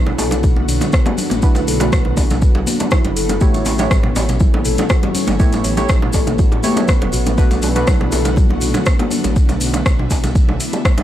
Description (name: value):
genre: afro house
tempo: 121 BPM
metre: 4/4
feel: straight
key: B minor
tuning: A4 = 438 Hz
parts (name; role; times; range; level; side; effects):
- ethereal airy pad; sustained chords; 0.0-11.0 s; D3 to F#4; -26 LUFS; equal; ensemble chorus, built-in reverb, sidechain pumping
- deep mellow chord stab; stabs; 0.0-9.3 s; A3 to C#5; -24 LUFS; right 1 dB; chorus, sidechain pumping, analog delay
- dark detuned saw bass; bass; 0.0-11.0 s; E1 to B1; -21 LUFS; equal; sidechain pumping
- afro-pop drum kit; drums; 0.1-11.0 s; hi-hat, rim click, toms; -23 LUFS; equal; none
- bongos; percussion; 0.1-11.0 s; none; -24 LUFS; right 3 dB; none
- handpan; arpeggios; 0.2-9.2 s; F#3 to B4; -23 LUFS; left 1 dB; sidechain pumping, analog delay
- congas; percussion; 0.2-9.3 s; none; -25 LUFS; left 4 dB; none
- maracas; percussion; 0.2-11.0 s; none; -29 LUFS; left 2 dB; none
- electronic kick drum; drums; 0.4-11.0 s; none; -14 LUFS; equal; none
room: studio reverb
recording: dry, gritty hardware recording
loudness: -13 LUFS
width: side -12 dB against mid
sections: 0.0-11.0 A section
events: none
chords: 0.0 Bm7; 3.4 A7; 7.4 Bm7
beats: 0.44 0.93 | 1.43 1.93 2.42 2.92 | 3.41 3.91 4.41 4.90 | 5.40 5.89 6.39 6.88 | 7.38 7.88 8.37 8.87 | 9.36 9.86 10.36 10.85